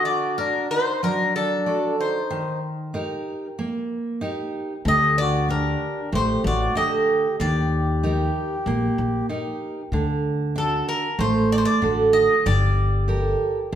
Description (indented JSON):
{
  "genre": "greek folk, Greek bouzouki band",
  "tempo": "95 BPM",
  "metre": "4/4",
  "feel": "straight",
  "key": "D phrygian dominant",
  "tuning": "A4 = 439 Hz",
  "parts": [
    { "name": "Greek bouzouki", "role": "melody", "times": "0.0-13.7 s", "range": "A4 to Eb5", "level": "-24 LUFS", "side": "left 1 dB", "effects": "none" },
    { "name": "mellow accordion", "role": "second line", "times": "0.0-9.3 s", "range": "D4 to G4", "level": "-28 LUFS", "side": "left 2 dB", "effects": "none" },
    { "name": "picked steel-string acoustic guitar", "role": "accompaniment", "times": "0.0-13.8 s", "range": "D3 to D5", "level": "-24 LUFS", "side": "right 3 dB", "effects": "none" },
    { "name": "upright bass", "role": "bass", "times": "4.9-13.8 s", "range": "G1 to Eb2", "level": "-24 LUFS", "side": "left 1 dB", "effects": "none" }
  ],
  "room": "wet large studio reverb, RT60 1.3 s",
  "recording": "band playing live in one room",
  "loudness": "-20 LUFS",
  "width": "side -10 dB against mid",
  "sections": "0.0-9.9 A section; 9.9-13.8 B section",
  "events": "none",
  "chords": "0.0 D; 2.3 Eb; 4.9 Dsus4; 7.4 Eb; 9.9 D; 12.5 Gmadd9"
}